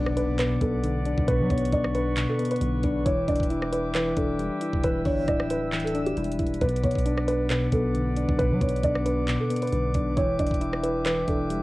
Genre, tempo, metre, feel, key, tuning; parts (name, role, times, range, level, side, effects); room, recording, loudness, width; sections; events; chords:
hip hop, trap; 135 BPM; 4/4; half-time; B minor; A4 = 440 Hz
soft electric-piano-like synth keys; accompaniment; 0.0-11.6 s; B2 to E4; -27 LUFS; left 2 dB; chorus, low-pass filter, cassette tape
mellow woodwind section; sustained chords; 0.0-11.6 s; B4 to E6; -36 LUFS; right 1 dB; cassette tape
long sustained 808-style bass; bass; 0.0-11.6 s; D1 to F#3; -30 LUFS; equal
impact; sound effects; 0.0-1.3 s; -42 LUFS; right 1 dB
trap drum kit; drums; 0.1-11.6 s; handclaps, hi-hat, kick drum, rim click; -29 LUFS; equal; cassette tape
felt-muted upright piano; melody; 0.2-11.6 s; E4 to D5; -29 LUFS; right 1 dB; low-pass filter, cassette tape, plate reverb
light reverb; home recording on cassette; -23 LUFS; side -19 dB against mid
0.0-11.6 A section
impact 0.0-1.3
0.0 Bm; 3.1 Em7; 6.6 Bm; 10.2 Em7